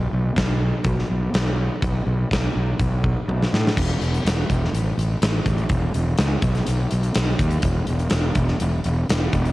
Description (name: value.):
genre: quiet-loud alternative rock.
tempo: 124 BPM.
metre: 4/4.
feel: straight.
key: unclear.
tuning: A4 = 440 Hz.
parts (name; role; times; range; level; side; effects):
fuzz fingered electric bass; bass; 0.0-9.5 s; E1 to A2; -21 LUFS; equal; overdrive.
huge arena drum kit; drums; 0.4-9.5 s; crash cymbal, hi-hat, kick drum, snare drum, toms; -23 LUFS; equal; none.
room: little or no reverb.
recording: home recording on cassette.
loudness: -19 LUFS.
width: side -18 dB against mid.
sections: 0.0-3.8 A section; 3.8-9.5 B section.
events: drum fill 3.3-3.8.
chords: none.